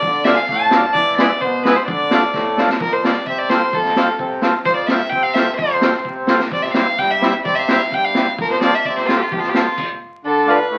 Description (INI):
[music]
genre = klezmer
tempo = 129 BPM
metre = 2/4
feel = straight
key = F major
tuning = A4 = 439 Hz
[part]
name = rich violin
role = melody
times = 0.0-10.8 s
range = F4 to A5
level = -20 LUFS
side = equal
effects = none
[part]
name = accordion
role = accompaniment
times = 0.0-10.8 s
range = F2 to F4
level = -22 LUFS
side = equal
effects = none
[part]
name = raw garage drum kit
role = drums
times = 0.0-9.9 s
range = crash cymbal, kick drum, snare drum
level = -23 LUFS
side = equal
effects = none
[sound]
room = wet studio reverb, RT60 0.7 s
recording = very old 78 rpm record, vinyl crackle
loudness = -17 LUFS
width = mono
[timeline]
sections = 0.0-2.8 A section; 2.8-10.2 B section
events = drum fill 2.3-2.8; stop 9.8-10.2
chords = 0.0 Dm; 1.0 E; 1.9 Dm; 2.8 F; 6.5 C; 8.4 F; 10.2 Dm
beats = | 0.03 0.49 | 0.96 1.42 | 1.88 2.34 | 2.81 3.27 | 3.73 4.20 | 4.66 5.13 | 5.59 6.06 | 6.52 6.99 | 7.45 7.92 | 8.38 8.85 | 9.31 9.78 | 10.24 10.71